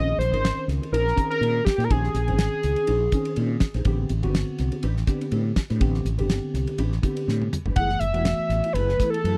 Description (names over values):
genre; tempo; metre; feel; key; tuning
electric jazz fusion; 123 BPM; 4/4; swing 55% on 16ths; unclear; A4 = 440 Hz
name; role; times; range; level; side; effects
overdriven synth lead; melody; 0.0-3.4, 7.8-9.4 s; G4 to Gb5; -27 LUFS; equal; chorus, tape echo
tine electric piano; accompaniment; 0.0-9.4 s; D3 to Bb4; -32 LUFS; equal; phaser
mellow electric guitar; stabs; 0.0-9.4 s; A3 to C5; -37 LUFS; equal; ensemble chorus
mellow fretless electric bass; bass; 0.0-9.4 s; Fb1 to Bb2; -27 LUFS; equal; none
damped 70s drum kit; drums; 0.2-9.4 s; hi-hat, kick drum, ride cymbal, snare drum, toms; -27 LUFS; equal; none
room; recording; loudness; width
little or no reverb; dry, close 1970s-style studio recording; -24 LUFS; mono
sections
0.0-9.4 A section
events
drum fill 7.3-7.8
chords
0.0 Bbm11; 3.9 Am11; 7.8 Gbm11